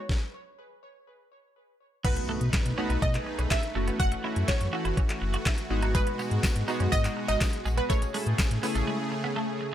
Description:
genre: dance-pop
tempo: 123 BPM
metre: 4/4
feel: straight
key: unclear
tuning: A4 = 440 Hz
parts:
  - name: wide unison pluck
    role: melody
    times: 0.0-9.3 s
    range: B4 to F#5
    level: -34 LUFS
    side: right 2 dB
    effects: tape echo
  - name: smooth R&B drum kit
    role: drums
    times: 0.1-8.9 s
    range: crash cymbal, handclaps, hi-hat, kick drum, snare drum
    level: -27 LUFS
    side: equal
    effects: none
  - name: chorused retro synth keys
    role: accompaniment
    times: 2.0-9.1 s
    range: G#3 to A4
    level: -35 LUFS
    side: left 1 dB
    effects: none
  - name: supersaw pad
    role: sustained chords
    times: 2.0-9.7 s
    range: B2 to B4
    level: -34 LUFS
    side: right 1 dB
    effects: sidechain pumping
  - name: twelve-string electric guitar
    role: riff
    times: 2.0-9.6 s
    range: G#3 to F#4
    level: -36 LUFS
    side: right 3 dB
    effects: lush chorus
  - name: sub bass with octave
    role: bass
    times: 2.0-8.8 s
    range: F#1 to B2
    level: -29 LUFS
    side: equal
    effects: sidechain pumping
  - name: impact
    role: sound effects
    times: 2.2-4.0 s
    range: none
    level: -40 LUFS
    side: left 1 dB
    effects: none
  - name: tambourine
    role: percussion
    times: 5.9-8.9 s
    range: none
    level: -44 LUFS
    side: left 4 dB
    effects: none
room: digital ambience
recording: dry, gritty hardware recording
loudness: -25 LUFS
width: side -11 dB against mid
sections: 0.0-2.0 A section; 2.0-9.7 B section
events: impact 2.0-4.0; break 8.9-9.7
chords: 0.1 N.C.; 2.0 B7; 3.8 F#m7; 5.7 G#m7; 7.9 Amaj7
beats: | 0.09 0.58 1.07 1.56 | 2.04 2.53 3.02 3.51 | 4.00 4.48 4.97 5.46 | 5.95 6.43 6.92 7.41 | 7.90 8.39 8.87 9.36

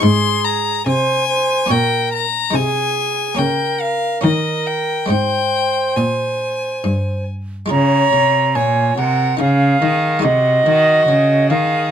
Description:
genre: classical, baroque-style sonata movement with continuo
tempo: 71 BPM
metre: 3/4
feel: straight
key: Ab major, Db major from 7.7 s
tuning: A4 = 441 Hz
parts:
  - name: rich violin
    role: melody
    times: 0.0-11.9 s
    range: Gb4 to C6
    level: -20 LUFS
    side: left 7 dB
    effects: none
  - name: concert flute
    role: second line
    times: 0.0-11.9 s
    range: Ab4 to Bb5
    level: -18 LUFS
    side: right 3 dB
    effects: none
  - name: buff-stop harpsichord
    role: accompaniment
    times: 0.0-11.9 s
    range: G2 to Db5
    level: -23 LUFS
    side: left 3 dB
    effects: none
  - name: rich cello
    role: bass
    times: 0.0-11.9 s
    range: G2 to Eb3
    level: -19 LUFS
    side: equal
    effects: none
room: light reverb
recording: none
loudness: -14 LUFS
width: side -9 dB against mid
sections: 0.0-7.7 A section; 7.7-11.9 A section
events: none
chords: 0.0 Ab; 1.7 Gdim/Bb; 2.5 Ab/C; 3.4 Bbm/Db; 4.2 Eb7; 5.1 Ab; 7.7 Db; 9.4 Eb5/Db; 10.2 Ab7/C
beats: | 0.03 0.86 1.70 | 2.54 3.38 4.23 | 5.10 5.97 6.84 | 7.71 8.55 9.40 | 10.24 11.09

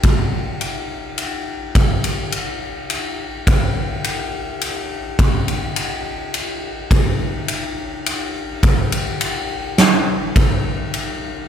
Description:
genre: rock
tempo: 105 BPM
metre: 3/4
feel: straight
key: none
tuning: none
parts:
  - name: huge arena drum kit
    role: drums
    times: 0.0-11.1 s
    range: kick drum, ride cymbal, snare drum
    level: -17 LUFS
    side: equal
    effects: none
room: light reverb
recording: none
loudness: -18 LUFS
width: side -8 dB against mid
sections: 0.0-11.5 A section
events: none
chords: none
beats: | 0.04 0.61 1.18 | 1.75 2.33 2.90 | 3.47 4.04 4.61 | 5.19 5.76 6.33 | 6.91 7.49 8.06 | 8.64 9.21 9.79 | 10.36 10.94

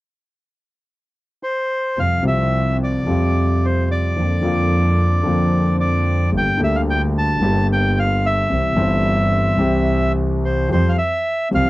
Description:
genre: tango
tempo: 110 BPM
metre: 4/4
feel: rubato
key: unclear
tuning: A4 = 440 Hz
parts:
  - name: bandoneon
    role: melody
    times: 1.4-11.7 s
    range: C5 to A5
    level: -21 LUFS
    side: equal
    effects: none
  - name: warm concert grand piano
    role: accompaniment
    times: 2.0-11.7 s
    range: G1 to G4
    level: -19 LUFS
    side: left 1 dB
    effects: none
  - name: rich double bass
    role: bass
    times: 2.0-11.7 s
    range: G1 to F2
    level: -21 LUFS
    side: right 1 dB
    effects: none
room: light reverb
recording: dry, close 1970s-style studio recording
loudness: -16 LUFS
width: side -18 dB against mid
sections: 0.0-2.0 A section; 2.0-10.7 B section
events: none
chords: 0.0 N.C.; 2.0 Fsus2; 4.2 Bb/F; 6.3 Gm; 8.5 C; 10.7 Fsus2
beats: 0.34 0.88 1.43 | 1.97 2.52 3.07 3.62 | 4.16 4.71 5.25 5.79 | 6.34 6.88 7.42 7.96 | 8.51 9.05 9.60 10.15 | 10.71 11.25

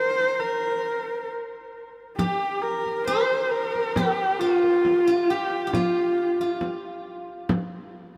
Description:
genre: mongolian traditional, Mongolian folk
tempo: 68 BPM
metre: 4/4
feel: straight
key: unclear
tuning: A4 = 440 Hz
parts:
  - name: rich horsehead fiddle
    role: melody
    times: 0.0-6.6 s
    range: F4 to C5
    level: -26 LUFS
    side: equal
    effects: none
  - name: steel-string zither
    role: second line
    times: 2.2-8.2 s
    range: F4 to C5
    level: -32 LUFS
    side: equal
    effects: none
  - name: frame drum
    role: percussion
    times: 2.2-7.7 s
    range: none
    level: -31 LUFS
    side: equal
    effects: none
room: wet huge ambient reverb, RT60 4.3 s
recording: heard from further back in the room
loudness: -24 LUFS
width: mono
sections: 0.0-2.2 A section; 2.2-8.2 B section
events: none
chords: none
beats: 0.41 1.30 | 2.19 3.08 3.96 4.85 | 5.73 6.62 7.50

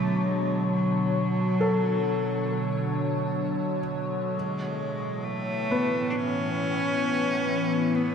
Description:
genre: ambient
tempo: 66 BPM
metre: 4/4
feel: straight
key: B dorian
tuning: A4 = 442 Hz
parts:
  - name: bright cello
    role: melody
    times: 0.0-8.1 s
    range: F#3 to D4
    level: -32 LUFS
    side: equal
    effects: none
  - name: evolving wavetable pad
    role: sustained chords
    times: 0.0-8.1 s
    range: A2 to A5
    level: -26 LUFS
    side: equal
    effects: chorus, built-in reverb
  - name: felt-muted upright piano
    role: arpeggios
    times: 1.6-8.1 s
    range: B3 to A4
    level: -31 LUFS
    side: left 2 dB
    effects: tape echo
room: wet cathedral reverb, RT60 5.2 s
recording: none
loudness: -24 LUFS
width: side -6 dB against mid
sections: 0.0-8.1 A section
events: none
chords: 0.0 Bm7; 4.3 Amaj7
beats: | 0.71 1.62 2.53 3.44 | 4.35 5.25 6.16 7.07 | 7.98

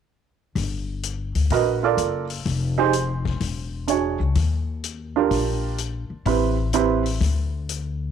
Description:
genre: jazz, small-group swing and bop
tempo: 126 BPM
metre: 4/4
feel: swing 67% on 8ths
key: G minor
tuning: A4 = 439 Hz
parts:
  - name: upright bass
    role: bass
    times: 0.6-8.1 s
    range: E1 to Eb2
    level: -24 LUFS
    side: left 2 dB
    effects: none
  - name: vintage drum kit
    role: drums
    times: 0.6-7.8 s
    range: hi-hat, kick drum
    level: -30 LUFS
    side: left 11 dB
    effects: none
  - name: warm baby grand piano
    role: accompaniment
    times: 1.5-7.0 s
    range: C4 to Eb5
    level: -21 LUFS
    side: right 10 dB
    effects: none
room: light reverb, small room ambience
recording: 1960s-style stereo with parts hard left and right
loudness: -21 LUFS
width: side -8 dB against mid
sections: 0.6-8.1 A section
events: none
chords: 0.6 Gm9; 2.5 Fm7; 3.4 E13; 4.4 Ebmaj9; 6.3 Am7; 7.2 N.C.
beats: | 0.56 1.03 1.51 1.98 | 2.46 2.93 3.41 3.88 | 4.36 4.83 5.31 5.79 | 6.26 6.74 7.21 7.69

